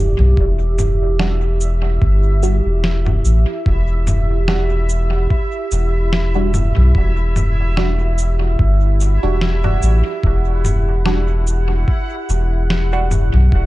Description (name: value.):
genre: ambient dub.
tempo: 73 BPM.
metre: 4/4.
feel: swing 55% on 16ths.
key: E minor.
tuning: A4 = 444 Hz.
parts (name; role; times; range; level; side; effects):
warbly tape-like pad; sustained chords; 0.0-13.7 s; G4; -26 LUFS; right 3 dB; chorus, built-in reverb.
soft dub sub bass; bass; 0.0-13.7 s; E1 to B1; -15 LUFS; equal; none.
bubbling stepped-filter texture; texture; 0.0-13.7 s; E4 to F#5; -27 LUFS; equal; chorus, built-in reverb.
electronic congas, cabasa and snare drum; drums; 0.2-13.5 s; none; -23 LUFS; left 1 dB; overdrive, small room ambience, dub echo.
electronic kick drum; drums; 0.4-13.7 s; none; -17 LUFS; equal; overdrive, small room ambience.
filtered dub chord stab; stabs; 1.2-13.1 s; G3 to F#4; -26 LUFS; right 2 dB; phaser, dub echo.
room: little or no reverb.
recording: nothing above 10.6 kHz.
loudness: -14 LUFS.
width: side -17 dB against mid.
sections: 0.0-13.7 A section.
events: none.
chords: 0.0 Em9.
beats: | 0.37 1.19 2.02 2.84 | 3.66 4.48 5.30 6.13 | 6.95 7.77 8.59 9.41 | 10.23 11.06 11.88 12.70 | 13.52.